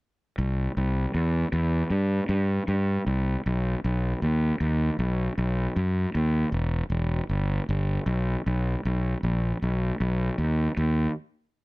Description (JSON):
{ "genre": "rock", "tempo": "78 BPM", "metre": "4/4", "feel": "straight", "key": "unclear", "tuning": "A4 = 440 Hz", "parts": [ { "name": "fuzz fingered electric bass", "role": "bass", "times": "0.4-11.1 s", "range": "E1 to G2", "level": "-24 LUFS", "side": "equal", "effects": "overdrive" } ], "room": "little or no reverb", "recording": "none", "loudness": "-24 LUFS", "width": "side -23 dB against mid", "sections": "0.4-11.6 A section", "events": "break 11.2-11.6", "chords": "none", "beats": "| 0.39 1.15 1.92 2.69 | 3.46 4.22 4.99 5.76 | 6.53 7.30 8.07 8.84 | 9.61 10.38" }